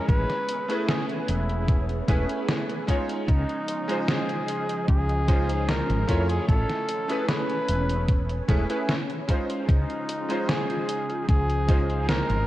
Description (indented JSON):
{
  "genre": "vaporwave",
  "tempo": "75 BPM",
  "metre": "4/4",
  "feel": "straight",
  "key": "Db major",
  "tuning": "A4 = 440 Hz",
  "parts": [
    { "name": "clear flugelhorn", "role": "melody", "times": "0.0-12.5 s", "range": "Eb4 to B4", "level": "-30 LUFS", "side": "equal", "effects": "vintage 12-bit sampler grit, tape echo" },
    { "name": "bright electric grand piano", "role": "accompaniment", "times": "0.0-12.4 s", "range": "Ab3 to Db5", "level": "-30 LUFS", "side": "equal", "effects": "ensemble chorus, analog delay" },
    { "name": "soft string machine", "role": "sustained chords", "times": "0.0-12.5 s", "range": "Db3 to G#5", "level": "-35 LUFS", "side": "right 1 dB", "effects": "phaser, ensemble chorus" },
    { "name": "woody fretless electric bass", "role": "bass", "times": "0.1-12.4 s", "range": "E1 to F2", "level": "-26 LUFS", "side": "equal", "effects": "none" },
    { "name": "detuned 8-bit digital drum machine", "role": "drums", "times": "0.1-12.4 s", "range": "hi-hat, snare drum", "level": "-29 LUFS", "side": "equal", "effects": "gated reverb" },
    { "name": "electronic kick drum", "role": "drums", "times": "0.1-11.9 s", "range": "none", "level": "-22 LUFS", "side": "equal", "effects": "none" }
  ],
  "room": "light reverb",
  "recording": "cassette tape",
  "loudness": "-23 LUFS",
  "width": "side -15 dB against mid",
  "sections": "0.0-12.5 A section",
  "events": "none",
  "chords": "0.1 Amaj9; 3.3 Dbmaj9; 6.5 Amaj9; 9.7 Dbmaj9"
}